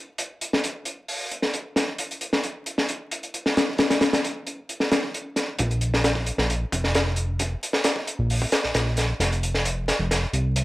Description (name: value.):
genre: breakbeat, breaks.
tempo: 133 BPM.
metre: 4/4.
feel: straight.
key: unclear.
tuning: A4 = 440 Hz.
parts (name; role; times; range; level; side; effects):
crunchy breakbeat drum kit; drums; 0.2-10.6 s; hi-hat, kick drum, snare drum; -23 LUFS; equal; high-pass filter on kick, high-pass filter on hats, high-pass filter on snare, high-pass filter on room.
fat analog bass; bass; 5.6-10.6 s; F1 to C2; -24 LUFS; equal; tube saturation.
room: light reverb.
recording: vinyl crackle.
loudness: -22 LUFS.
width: side -18 dB against mid.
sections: 0.0-5.6 A section; 5.6-10.6 B section.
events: build-up 5.6-10.6; drum fill 9.2-10.6.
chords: none.